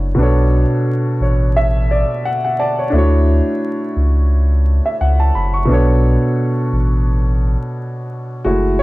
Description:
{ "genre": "lo-fi hip hop", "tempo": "87 BPM", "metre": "4/4", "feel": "swing 56% on 16ths", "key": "unclear", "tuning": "A4 = 441 Hz", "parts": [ { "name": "warm upright piano", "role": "accompaniment", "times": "0.0-8.8 s", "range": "B2 to C#6", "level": "-16 LUFS", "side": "equal", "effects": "cassette tape" }, { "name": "saturated sub bass", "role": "bass", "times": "0.0-8.8 s", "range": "F#1 to D2", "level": "-14 LUFS", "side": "equal", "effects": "none" } ], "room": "studio reverb", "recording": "dark, warm production, vinyl crackle", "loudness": "-13 LUFS", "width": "side -19 dB against mid", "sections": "0.0-8.4 A section", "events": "upright piano fill 0.9-2.9", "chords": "0.2 Bm9; 2.9 Dmaj7; 5.7 Bm9", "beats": "| 0.17 0.86 1.55 2.24 | 2.93 3.62 4.31 5.00 | 5.69 6.38 7.07 7.76 | 8.45" }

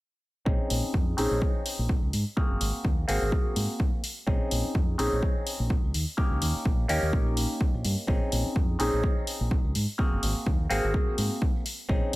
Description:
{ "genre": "filtered disco house", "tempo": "126 BPM", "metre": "4/4", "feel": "swing 55% on 16ths", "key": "Bb minor", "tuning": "A4 = 439 Hz", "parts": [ { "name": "clav", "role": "accompaniment", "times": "0.5-12.2 s", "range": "Bb3 to Ab4", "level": "-30 LUFS", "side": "equal", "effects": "phaser, vintage 12-bit sampler grit, sidechain pumping, low-pass filter" }, { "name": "fingered electric bass", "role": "bass", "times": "0.5-12.2 s", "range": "Gb1 to Ab2", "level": "-29 LUFS", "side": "equal", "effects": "tube saturation, sidechain pumping, low-pass filter" }, { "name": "electronic kick drum", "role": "drums", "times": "0.5-12.0 s", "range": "none", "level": "-26 LUFS", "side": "equal", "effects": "none" }, { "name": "tambourine", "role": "percussion", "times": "0.5-12.2 s", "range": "none", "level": "-61 LUFS", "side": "left 2 dB", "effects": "none" }, { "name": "electronic hi-hat", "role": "drums", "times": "0.7-12.2 s", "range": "none", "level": "-34 LUFS", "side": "left 1 dB", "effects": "sidechain pumping on hats" } ], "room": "digital ambience", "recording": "none", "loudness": "-24 LUFS", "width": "side -19 dB against mid", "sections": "0.5-12.2 A section", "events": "filter sweep 0.5-12.2", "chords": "0.5 Bbm11; 2.1 Ab9; 4.0 Bbm11; 5.9 Eb7; 8.1 Bbm11; 9.8 Ab9; 11.7 Bbm11", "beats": "| 0.47 0.94 1.42 1.90 | 2.37 2.85 3.32 3.80 | 4.28 4.75 5.23 5.71 | 6.18 6.66 7.13 7.61 | 8.09 8.56 9.04 9.51 | 9.99 10.47 10.94 11.42 | 11.89" }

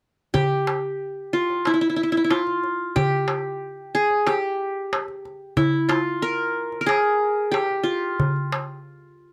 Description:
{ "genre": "Arabic maqam ensemble", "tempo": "92 BPM", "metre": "4/4", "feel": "straight", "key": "unclear", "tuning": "A4 = 440 Hz", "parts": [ { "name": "qanun", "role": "melody", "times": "0.3-9.3 s", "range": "E4 to Bb4", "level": "-24 LUFS", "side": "equal", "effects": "none" }, { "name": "darbuka", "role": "percussion", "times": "0.3-8.7 s", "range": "none", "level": "-27 LUFS", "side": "equal", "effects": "none" } ], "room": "light reverb", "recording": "close, detailed microphones", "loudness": "-23 LUFS", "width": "mono", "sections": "0.3-9.3 A section", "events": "none", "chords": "none", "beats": "| 0.35 1.00 1.65 2.31 | 2.96 3.61 4.27 4.92 | 5.58 6.23 6.88 7.54 | 8.19 8.85" }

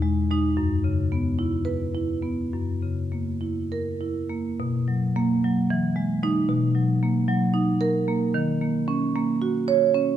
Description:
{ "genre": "classical, contemporary piece for solo marimba", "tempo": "200-226 BPM (eighths)", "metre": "7/8", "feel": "rubato", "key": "B major", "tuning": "A4 = 440 Hz", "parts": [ { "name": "marimba with medium mallets", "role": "solo", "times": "0.0-10.2 s", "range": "E2 to C#5", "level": "-22 LUFS", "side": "right 1 dB", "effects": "none" } ], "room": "wet recital hall reverb, RT60 1.6 s", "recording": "none", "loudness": "-22 LUFS", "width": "side -10 dB against mid", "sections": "0.0-4.6 A section; 4.6-10.2 B section", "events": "none", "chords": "0.0 Emaj7; 0.6 F#7sus4; 2.5 F#7; 4.6 B5; 5.7 Emaj7; 6.5 Bmaj7; 8.4 D#m7", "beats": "0.02 0.29 | 0.57 0.84 1.11 1.39 1.66 1.94 2.23 | 2.53 2.83 3.12 3.41 3.71 4.00 4.30 | 4.58 4.87 5.14 5.42 5.69 5.95 6.22 | 6.49 6.75 7.02 7.29 7.55 7.82 8.09 | 8.36 8.63 8.90 9.16 9.43 9.70 9.97" }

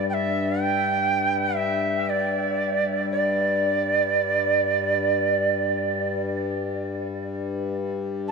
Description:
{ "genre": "world meditative, free-time meditation music", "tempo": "free time", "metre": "none", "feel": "none", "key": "unclear", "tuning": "A4 = 440 Hz", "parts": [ { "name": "breathy bright Native American-style cedar flute", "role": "melody", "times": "0.0-8.3 s", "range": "D5 to A5", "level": "-23 LUFS", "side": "right 3 dB", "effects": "diffuse ambient delay" }, { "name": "hand-pumped harmonium", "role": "drone", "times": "0.0-8.3 s", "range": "G2 to G3", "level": "-28 LUFS", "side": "left 4 dB", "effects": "none" }, { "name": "quartz singing bowl", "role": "texture", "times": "0.0-3.2 s", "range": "D4", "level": "-37 LUFS", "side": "left 1 dB", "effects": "none" } ], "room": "wet cathedral reverb, RT60 7.1 s", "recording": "dark, warm production", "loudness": "-22 LUFS", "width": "side -4 dB against mid", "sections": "0.0-8.3 A section", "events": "none", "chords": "none", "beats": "free time" }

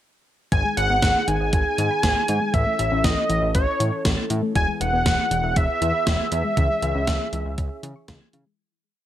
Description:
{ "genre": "synth-pop", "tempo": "119 BPM", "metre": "4/4", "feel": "straight", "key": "unclear", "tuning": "A4 = 440 Hz", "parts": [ { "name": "wide unison lead", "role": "melody", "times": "0.5-8.3 s", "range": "C#5 to G#5", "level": "-23 LUFS", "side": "equal", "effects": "none" }, { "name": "dark French horn section", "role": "sustained chords", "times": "0.5-8.6 s", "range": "C#3 to A4", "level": "-31 LUFS", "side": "right 4 dB", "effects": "none" }, { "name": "soft round pluck", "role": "arpeggios", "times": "0.5-8.5 s", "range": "D#3 to A6", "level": "-30 LUFS", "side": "left 5 dB", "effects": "chorus" }, { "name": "fat analog bass", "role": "bass", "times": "0.5-8.4 s", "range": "E1 to C#3", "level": "-26 LUFS", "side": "equal", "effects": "none" }, { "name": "gated 80s digital drum machine", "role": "drums", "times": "0.5-8.5 s", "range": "hi-hat, kick drum, snare drum", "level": "-23 LUFS", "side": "equal", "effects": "gated reverb, gated reverb snare" } ], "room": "light reverb", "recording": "none", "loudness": "-19 LUFS", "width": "side -12 dB against mid", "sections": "0.5-8.6 bridge", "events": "fade-out 6.6-8.6", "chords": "0.5 G#m; 2.5 A; 4.6 E; 6.6 C#m", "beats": "| 0.52 1.02 1.53 2.03 | 2.54 3.04 3.54 4.05 | 4.55 5.06 5.56 6.07 | 6.57 7.08 7.58 8.08" }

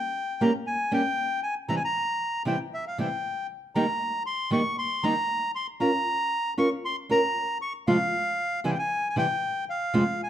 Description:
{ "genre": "tango", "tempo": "116 BPM", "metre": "4/4", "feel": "rubato", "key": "unclear", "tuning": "A4 = 440 Hz", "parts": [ { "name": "bandoneon", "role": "melody", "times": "0.0-10.3 s", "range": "E5 to Db6", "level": "-27 LUFS", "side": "left 1 dB", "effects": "none" }, { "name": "nylon-string guitar", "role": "accompaniment", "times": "0.4-10.0 s", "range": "F2 to Bb4", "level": "-26 LUFS", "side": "right 1 dB", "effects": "none" } ], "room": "moderate large studio reverb, RT60 1.4 s", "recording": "minimal, uncompressed stereo recording", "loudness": "-24 LUFS", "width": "side -10 dB against mid", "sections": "0.0-10.3 A section", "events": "none", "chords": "0.0 Gdim; 1.7 C; 3.7 Eb; 5.8 Bbm/Db; 7.9 F5/C; 8.9 C", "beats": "0.15 0.66 1.17 | 1.69 2.20 2.72 3.23 | 3.75 4.27 4.78 5.30 | 5.81 6.32 6.84 7.35 | 7.86 8.38 8.89 9.41 | 9.93" }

